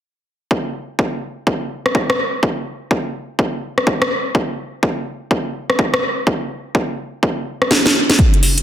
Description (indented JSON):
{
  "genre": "house",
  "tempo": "125 BPM",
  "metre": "4/4",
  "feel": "swing 62% on 16ths",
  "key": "none",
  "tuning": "none",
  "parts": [
    { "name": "electronic kick drum", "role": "drums", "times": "0.5-8.3 s", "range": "none", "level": "-18 LUFS", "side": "equal", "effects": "overdrive, high-pass filter on kick, high-pass filter on room" },
    { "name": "house drum kit", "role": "drums", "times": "1.9-8.6 s", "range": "hi-hat, rim click, snare drum", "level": "-16 LUFS", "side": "equal", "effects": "overdrive" }
  ],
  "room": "moderate digital room reverb, RT60 1.3 s",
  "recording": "dense, heavily limited modern master",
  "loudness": "-16 LUFS",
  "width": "side -11 dB against mid",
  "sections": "0.5-8.2 A section",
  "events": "drum fill 7.7-8.2",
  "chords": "none"
}